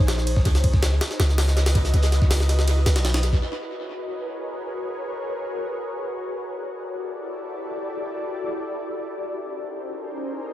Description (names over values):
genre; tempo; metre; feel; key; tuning
drum and bass, jungle; 162 BPM; 4/4; straight; unclear; A4 = 440 Hz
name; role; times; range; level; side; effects
ethereal airy pad; sustained chords; 0.0-10.5 s; C#4 to D#5; -29 LUFS; left 1 dB; ensemble chorus, built-in reverb
long sustained 808-style bass; bass; 0.0-3.4 s; A#1 to C#2; -20 LUFS; equal; none
crunchy breakbeat drum kit; drums; 0.1-3.4 s; hi-hat, shaker, snare drum; -40 LUFS; right 2 dB; none
jungle sampler-style drum kit; drums; 0.1-3.4 s; hi-hat, kick drum, ride cymbal, snare drum; -23 LUFS; equal; dub echo
room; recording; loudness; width
light reverb, small room ambience; echo-heavy mix; -22 LUFS; side -14 dB against mid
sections
0.0-3.4 A section; 3.4-10.5 B section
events
none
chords
0.5 C#m11; 3.4 G#m11; 6.4 Em11; 9.3 A#m11